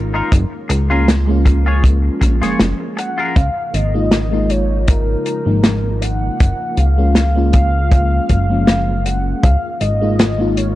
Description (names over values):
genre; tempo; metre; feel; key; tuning
vaporwave; 79 BPM; 4/4; swing 55% on 16ths; Db major; A4 = 439 Hz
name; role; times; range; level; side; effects
mellow FM electric piano; accompaniment; 0.0-10.8 s; F3 to F4; -21 LUFS; left 1 dB; analog chorus, cassette tape
soft string machine; sustained chords; 0.0-10.8 s; Db3 to F4; -28 LUFS; equal; ensemble chorus
chorused synth bass; bass; 0.0-10.8 s; Gb1 to Db2; -16 LUFS; equal; tube saturation
clean electric guitar; riff; 0.1-3.4 s; Eb4 to Db5; -23 LUFS; left 2 dB; analog chorus, tape echo
kick drum; drums; 0.3-9.6 s; none; -13 LUFS; equal; vintage 12-bit sampler grit
warm soul drum kit; drums; 0.3-10.7 s; hi-hat, snare drum; -17 LUFS; equal; vintage 12-bit sampler grit
warm velvety synth lead; melody; 3.0-10.8 s; Bb4 to Gb5; -22 LUFS; equal; chorus, tape echo
room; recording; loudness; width
small room ambience; cassette tape; -13 LUFS; side -15 dB against mid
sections
0.0-3.4 A section; 3.4-10.8 A section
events
none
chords
0.3 Gbmaj9; 3.4 Db69; 6.4 Gbmaj9; 9.4 Db69